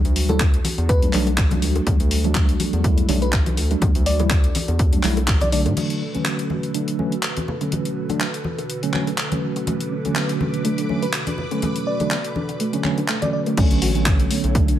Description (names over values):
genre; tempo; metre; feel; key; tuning
deep house; 123 BPM; 4/4; swing 55% on 16ths; B minor; A4 = 440 Hz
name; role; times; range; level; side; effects
airy breathy pad; sustained chords; 0.0-14.8 s; B2 to C#5; -31 LUFS; right 2 dB; chorus, sidechain pumping
mellow tine electric piano; stabs; 0.0-14.8 s; D3 to E4; -24 LUFS; right 1 dB; medium stereo tremolo, sidechain pumping, low-pass filter
round analog bass; bass; 0.0-5.7, 13.6-14.7 s; A1 to A2; -22 LUFS; equal; sidechain pumping
deep house drum kit; drums; 0.0-14.8 s; crash cymbal, handclaps, hi-hat; -26 LUFS; left 1 dB; overdrive
bell-like FM electric piano; melody; 0.3-5.6, 11.0-13.4 s; A4 to D5; -28 LUFS; left 1 dB; chorus, cassette tape, dub echo
congas and bongos; percussion; 0.3-13.6 s; none; -30 LUFS; left 3 dB; none
electronic kick drum; drums; 0.4-5.4, 13.6-14.7 s; none; -19 LUFS; equal; none
soft round pluck; arpeggios; 9.7-14.7 s; A3 to F#4; -29 LUFS; right 1 dB; wide subtle chorus, sidechain pumping, dub echo
string machine, violins; texture; 9.7-13.6 s; B4 to D6; -35 LUFS; equal; ensemble chorus
room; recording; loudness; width
light reverb; none; -18 LUFS; side -12 dB against mid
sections
0.0-5.8 A section; 5.8-13.6 B section; 13.6-14.8 C section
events
drop 13.6-14.8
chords
0.0 Em11; 5.8 Bm9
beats
0.40 0.89 1.38 | 1.87 2.35 2.84 3.33 | 3.82 4.31 4.79 5.28 | 5.77 6.26 6.75 7.23 | 7.72 8.21 8.70 9.18 | 9.67 10.16 10.65 11.13 | 11.62 12.11 12.60 13.09 | 13.57 14.06 14.55